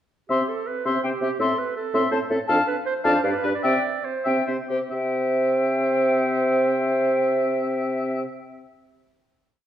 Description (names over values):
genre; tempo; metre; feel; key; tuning
quick classical-period movement for wind quintet; 137-167 BPM; 3/4; rubato; C major; A4 = 440 Hz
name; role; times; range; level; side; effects
mellow silver concert flute; melody; 0.3-8.2 s; C5 to C6; -28 LUFS; left 4 dB; none
clear oboe; second line; 0.3-8.2 s; G4 to F5; -28 LUFS; left 1 dB; none
clear clarinet; accompaniment; 0.3-8.2 s; G4 to D5; -28 LUFS; right 4 dB; none
mellow French horn; accompaniment; 0.3-8.2 s; C4 to D4; -29 LUFS; left 2 dB; none
dark bassoon; bass; 0.3-8.2 s; F2 to C3; -25 LUFS; right 1 dB; none
room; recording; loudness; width
wet recital hall reverb, RT60 1.5 s; worn, warbling old tape, cassette tape, warbly pitch drift; -20 LUFS; side -11 dB against mid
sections
0.3-4.9 theme; 4.9-7.5 final chord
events
slowing down 1.9-4.9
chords
0.3 C; 1.4 Am; 2.5 Dm/F; 3.2 G; 3.6 C